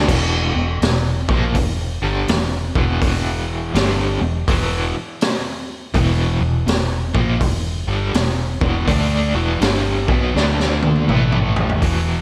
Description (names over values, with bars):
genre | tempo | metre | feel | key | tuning
blues rock power trio and southern rock | 82 BPM | 4/4 | swing 64% on 8ths | unclear | A4 = 440 Hz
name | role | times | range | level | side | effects
overdriven semi-hollow guitar | riff | 0.0-12.2 s | E2 to D4 | -23 LUFS | equal | tremolo
vintage muted fingered electric bass | bass | 0.0-12.2 s | E1 to D2 | -24 LUFS | equal | none
raw garage drum kit | drums | 0.1-12.0 s | crash cymbal, hi-hat, kick drum, snare drum, toms | -22 LUFS | equal | none
room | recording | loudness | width
moderate lush hall reverb, RT60 1.8 s, small room ambience | big arena sound | -19 LUFS | mono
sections
0.1-11.8 A section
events
drum fill 10.3-11.8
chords
0.1 E5; 10.3 D5; 11.1 A5